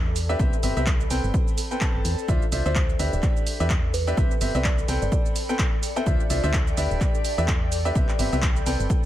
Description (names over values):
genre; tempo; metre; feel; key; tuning
piano house; 127 BPM; 4/4; swing 57% on 16ths; unclear; A4 = 440 Hz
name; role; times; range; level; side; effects
solid FM bass; bass; 0.0-8.9 s; D1 to E2; -26 LUFS; equal; sidechain pumping
granular cloud pad; texture; 0.0-9.1 s; A4 to B5; -34 LUFS; left 1 dB; built-in reverb, sidechain pumping
punchy analog drum machine; drums; 0.2-9.0 s; cabasa, handclaps, hi-hat; -31 LUFS; right 1 dB; small room ambience
bright baby grand piano; riff; 0.3-9.1 s; C4 to A5; -28 LUFS; equal; sidechain pumping, tape echo
electronic kick drum; drums; 0.4-9.0 s; none; -23 LUFS; equal; small room ambience
kalimba; melody; 2.7-6.1 s; A4 to E5; -33 LUFS; right 3 dB; tape echo
room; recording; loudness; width
digital ambience; none; -21 LUFS; side -13 dB against mid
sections
0.0-9.1 A section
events
none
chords
0.4 Am9; 2.3 Dm9; 3.2 Em7; 4.2 Cmaj7; 4.9 Am9; 6.1 Dm9; 7.0 Em7; 8.0 Am9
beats
| 0.40 0.87 1.34 1.81 | 2.28 2.76 3.23 3.70 | 4.17 4.65 5.12 5.59 | 6.06 6.54 7.01 7.48 | 7.95 8.43 8.90